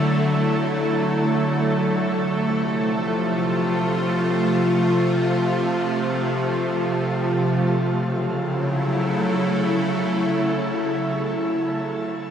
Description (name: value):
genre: ambient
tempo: free time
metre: none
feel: none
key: unclear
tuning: A4 = 440 Hz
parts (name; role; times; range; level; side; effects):
- evolving wavetable pad; solo; 0.0-11.4 s; C3 to A4; -19 LUFS; equal; ensemble chorus, built-in reverb, diffuse ambient delay
room: wet shimmer reverb, RT60 7.8 s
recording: dark, warm production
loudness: -19 LUFS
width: side -8 dB against mid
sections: 0.0-7.8 A section; 7.8-10.7 B section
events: none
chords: 0.0 Dadd9; 2.0 F; 7.8 F#m7